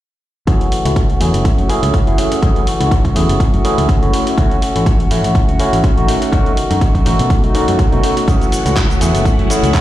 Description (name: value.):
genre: filtered disco house.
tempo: 123 BPM.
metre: 4/4.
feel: swing 55% on 16ths.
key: F# minor.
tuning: A4 = 441 Hz.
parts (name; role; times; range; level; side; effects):
overdriven tine electric piano; accompaniment; 0.5-9.8 s; A3 to G#4; -19 LUFS; equal; phaser, sidechain pumping, low-pass filter.
direct-recorded clean electric guitar; riff; 0.5-9.8 s; D#3 to F#4; -20 LUFS; left 2 dB; sidechain pumping, low-pass filter.
fingered electric bass; bass; 0.5-9.7 s; F#1 to B2; -17 LUFS; equal; sidechain pumping, low-pass filter.
dusty soul sampler-style drum kit; drums; 0.5-9.8 s; handclaps, hi-hat, shaker; -25 LUFS; right 1 dB; sidechain pumping on hats, small room reverb, sidechain pumping on perc.
electronic kick drum; drums; 0.5-9.8 s; none; -14 LUFS; equal; overdrive, small room reverb.
phased string machine; sustained chords; 8.3-9.8 s; A3 to F#5; -21 LUFS; left 1 dB; ensemble chorus, phaser, sidechain pumping, low-pass filter.
room: light reverb.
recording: played on a big sound system in a bare room, large studio reverb.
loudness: -12 LUFS.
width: side -14 dB against mid.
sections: 0.5-9.8 A section.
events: filter sweep 0.5-9.8.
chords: 0.5 F#m7; 4.1 Dmaj7 (rootless); 6.1 B7; 8.3 F#m7.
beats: | 0.47 0.96 1.45 1.94 | 2.43 2.91 3.40 3.89 | 4.38 4.87 5.35 5.84 | 6.33 6.82 7.30 7.79 | 8.28 8.77 9.26 9.74.